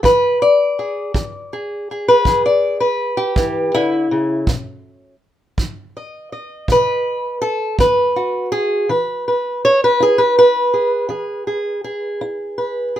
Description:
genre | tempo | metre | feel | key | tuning
acoustic country blues, solo or duo | 54 BPM (dotted quarters) | 12/8 | straight | unclear | A4 = 435 Hz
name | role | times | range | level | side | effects
fingerpicked swing-style acoustic guitar | melody | 0.0-13.0 s | B2 to D#5 | -15 LUFS | equal | none
kick drum | drums | 0.0-8.0 s | none | -20 LUFS | right 2 dB | none
room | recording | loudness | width
moderate studio ambience, RT60 0.5 s | minimal, uncompressed stereo recording | -15 LUFS | side -11 dB against mid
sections
0.0-8.9 A section; 8.9-13.0 B section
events
steel-string acoustic guitar solo 8.9-13.0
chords
0.0 E7; 4.5 B; 8.9 E

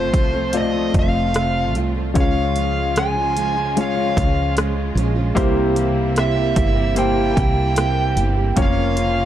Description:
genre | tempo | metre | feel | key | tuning
pop ballad | 75 BPM | 4/4 | straight | unclear | A4 = 440 Hz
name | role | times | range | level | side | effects
dark smooth lead guitar | melody | 0.0-9.3 s | C5 to Ab5 | -23 LUFS | equal | overdrive
warm concert grand piano | accompaniment | 0.0-9.3 s | C3 to Eb5 | -22 LUFS | left 2 dB | none
clear studio string section | sustained chords | 0.0-9.3 s | C3 to F4 | -30 LUFS | right 1 dB | none
fingerpicked plugged-in steel-string acoustic guitar | arpeggios | 0.0-9.3 s | F2 to G4 | -26 LUFS | right 7 dB | ping-pong delay
woody fretless electric bass | bass | 0.0-9.3 s | F1 to Db2 | -22 LUFS | equal | none
punchy analog drum machine | drums | 0.1-9.2 s | hi-hat, kick drum, rim click | -21 LUFS | equal | overdrive
room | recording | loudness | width
little or no reverb | dark, warm production | -16 LUFS | side -11 dB against mid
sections
0.0-9.3 A section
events
none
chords
0.0 F; 2.2 Db; 5.4 C7; 8.6 Bbm/F

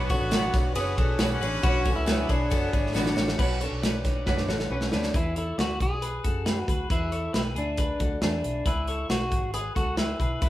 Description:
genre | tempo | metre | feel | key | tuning
jangly indie pop | 137 BPM | 4/4 | straight | E mixolydian | A4 = 440 Hz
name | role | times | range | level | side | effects
bright trumpet | second line | 0.0-3.4 s | B3 to C#4 | -37 LUFS | left 3 dB | none
fingerpicked twelve-string acoustic guitar | accompaniment | 0.0-5.2 s | B2 to C#5 | -32 LUFS | right 2 dB | none
warm analog pad | sustained chords | 0.0-3.4 s | B4 to C#6 | -40 LUFS | right 1 dB | none
twelve-string electric guitar | arpeggios | 0.0-10.5 s | D4 to D5 | -34 LUFS | left 3 dB | none
vintage muted fingered electric bass | bass | 0.0-10.5 s | F#1 to F#2 | -32 LUFS | equal | none
electric guitar at the edge of break-up | melody | 0.1-10.5 s | C#4 to G#4 | -31 LUFS | left 1 dB | none
modern studio drum kit | drums | 0.1-10.5 s | crash cymbal, hi-hat, kick drum, ride cymbal, snare drum | -26 LUFS | equal | none
tambourine | percussion | 0.1-3.3 s | none | -46 LUFS | right 6 dB | none
room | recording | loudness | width
moderate large studio reverb, RT60 0.9 s | band playing live in one room | -24 LUFS | side -14 dB against mid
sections
0.0-3.4 A section; 3.4-5.1 B section; 5.1-10.5 C section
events
drum fill 3.0-3.4, 4.3-5.1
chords
0.0 Bmadd9; 5.1 E7; 8.7 C#m7

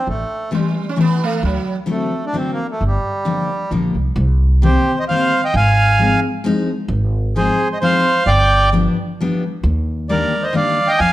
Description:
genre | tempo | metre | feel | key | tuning
musette waltz | 132 BPM | 3/4 | straight | G minor, C minor from 4.2 s | A4 = 440 Hz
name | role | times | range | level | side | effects
accordion | melody | 0.0-11.1 s | G3 to Ab5 | -17 LUFS | right 1 dB | none
upright bass | bass | 0.1-11.1 s | G1 to F2 | -17 LUFS | equal | none
sitar | second line | 0.5-1.8 s | F#3 to C#4 | -23 LUFS | right 4 dB | none
picked steel-string acoustic guitar | accompaniment | 0.5-10.8 s | D3 to Eb4 | -20 LUFS | left 3 dB | none
room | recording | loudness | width
moderate recital hall reverb, RT60 1.4 s | none | -14 LUFS | side -15 dB against mid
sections
0.0-4.2 A section; 4.2-11.1 B section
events
none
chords
0.1 A7; 1.4 D7; 2.8 Gm7; 4.2 Cm7; 5.5 Ab6; 8.3 G7; 9.6 Ebmaj7

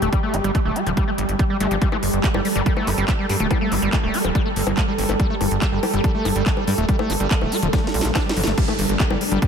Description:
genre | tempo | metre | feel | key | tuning
psychedelic trance | 142 BPM | 4/4 | straight | unclear | A4 = 440 Hz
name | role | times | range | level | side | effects
pulsing gated texture | sustained chords | 0.0-9.5 s | G3 to A4 | -24 LUFS | right 2 dB | chorus, built-in reverb, sidechain pumping
screaming distorted acid line | riff | 0.0-9.5 s | F3 to G4 | -25 LUFS | left 1 dB | distortion, chorus, auto-pan, sidechain pumping, ping-pong delay
plucky analog bass | bass | 0.0-9.4 s | D1 to G2 | -23 LUFS | equal | none
techno drum kit | drums | 0.0-9.5 s | bongos, crash cymbal, handclaps, hi-hat, snare drum | -26 LUFS | left 2 dB | overdrive
electronic kick drum | drums | 0.1-9.5 s | none | -21 LUFS | equal | overdrive
vowel-sweep wobble bass | second line | 3.0-4.7 s | none | barely audible | none | none
downlifter | sound effects | 8.6-9.5 s | none | -29 LUFS | left 2 dB | none
room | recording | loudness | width
moderate cathedral reverb, RT60 6.0 s | dreamy mix soaked in reverb | -18 LUFS | side -7 dB against mid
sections
0.0-8.6 A section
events
drum fill 7.7-8.6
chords
0.0 G5

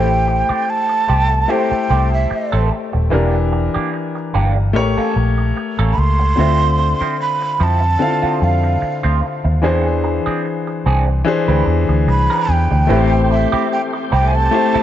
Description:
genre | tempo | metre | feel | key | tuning
soul | 74 BPM | 4/4 | swing 54% on 16ths | A minor | A4 = 441 Hz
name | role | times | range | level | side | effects
breathy mellow jazz flute | melody | 0.0-14.8 s | E5 to C6 | -19 LUFS | right 3 dB | tape echo
clear concert grand piano | accompaniment | 0.0-14.8 s | D3 to F5 | -20 LUFS | left 5 dB | none
electric guitar through a small old amp | riff | 0.0-14.8 s | F3 to B4 | -24 LUFS | right 6 dB | wah
vintage muted fingered electric bass | bass | 0.0-14.8 s | D#1 to F2 | -16 LUFS | equal | none
overdriven tonewheel organ | sustained chords | 12.9-14.8 s | A3 to G4 | -23 LUFS | left 1 dB | chorus vibrato, slow rotary speaker
room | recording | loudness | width
light reverb, small room ambience | dark, warm production, nothing above 7.9 kHz | -14 LUFS | side -11 dB against mid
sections
0.0-12.9 A section; 12.9-14.8 B section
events
none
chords
0.0 Am7; 3.1 Em7b5; 4.8 A7b9; 6.4 Dm9; 9.6 E7b13; 12.9 Am7

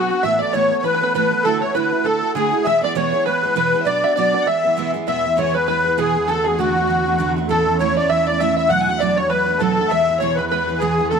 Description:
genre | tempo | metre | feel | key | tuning
celtic folk, Celtic reel | 198 BPM | 4/4 | swing 57% on 8ths | E mixolydian | A4 = 440 Hz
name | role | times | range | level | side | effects
musette accordion | melody | 0.0-11.2 s | F#4 to F#5 | -18 LUFS | left 1 dB | slapback echo
dark fiddle | second line | 0.0-11.2 s | F#4 to G#5 | -24 LUFS | left 14 dB | none
open-back banjo | second line | 0.0-11.2 s | F#4 to F#5 | -27 LUFS | right 11 dB | none
picked steel-string acoustic guitar | accompaniment | 0.0-11.2 s | E2 to A4 | -23 LUFS | right 12 dB | none
warm cello | drone | 5.1-11.2 s | E2 | -27 LUFS | left 2 dB | stereo widening
room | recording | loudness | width
light reverb, small room reverb | 1960s-style stereo with parts hard left and right | -16 LUFS | side -6 dB against mid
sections
0.0-5.1 A section; 5.1-11.2 B section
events
none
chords
0.2 Asus2; 1.4 Dadd9; 2.7 E; 3.9 Bm; 4.5 E; 6.3 D; 7.5 A; 8.7 Bm7; 9.9 E

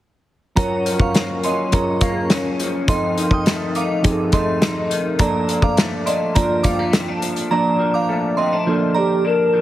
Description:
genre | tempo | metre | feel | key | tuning
indie pop, bedroom pop | 104 BPM | 4/4 | straight | Bb major | A4 = 440 Hz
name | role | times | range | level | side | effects
glassy synth bell | second line | 0.6-9.2 s | Db5 to Eb6 | -23 LUFS | right 2 dB | lush chorus, tape echo
electric guitar through a small old amp | accompaniment | 0.6-9.6 s | F2 to Eb4 | -23 LUFS | left 3 dB | ensemble chorus, warbly pitch drift
mellow reed electric piano | accompaniment | 0.6-9.6 s | F3 to Bb5 | -22 LUFS | right 2 dB | cassette tape
loose indie drum kit | drums | 0.6-7.5 s | hi-hat, kick drum, snare drum | -20 LUFS | equal | none
hollow clarinet-like synth lead | melody | 9.0-9.6 s | G4 to Bb4 | -16 LUFS | left 1 dB | wide subtle chorus
room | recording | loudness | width
moderate plate reverb, RT60 2.5 s | heavily compressed radio sound, multiband compression | -16 LUFS | side -14 dB against mid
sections
0.6-9.6 A section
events
none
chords
0.6 Gbmaj7; 2.9 F7; 5.2 Bbmaj7

